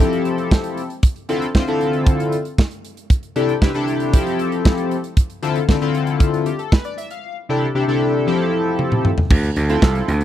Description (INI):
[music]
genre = early-eighties boogie funk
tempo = 116 BPM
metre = 4/4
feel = straight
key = D minor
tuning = A4 = 439 Hz
[part]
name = chorused polysynth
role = accompaniment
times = 0.0-10.1 s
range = C3 to F5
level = -19 LUFS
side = left 2 dB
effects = none
[part]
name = modern studio drum kit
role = drums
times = 0.0-10.2 s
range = crash cymbal, hi-hat, kick drum, snare drum, toms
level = -15 LUFS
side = right 1 dB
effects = none
[part]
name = gritty slap bass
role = bass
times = 9.3-10.2 s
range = C2 to D2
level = -18 LUFS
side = right 1 dB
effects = overdrive
[sound]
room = small room ambience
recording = dry, close 1970s-style studio recording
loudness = -16 LUFS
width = side -11 dB against mid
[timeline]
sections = 0.0-9.3 A section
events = drum fill 8.8-9.3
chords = 0.0 Fmaj9; 1.0 Dm9; 3.1 C69; 4.1 Fmaj9; 5.2 Dm9; 7.2 C69; 8.3 Fmaj9; 9.3 Dm9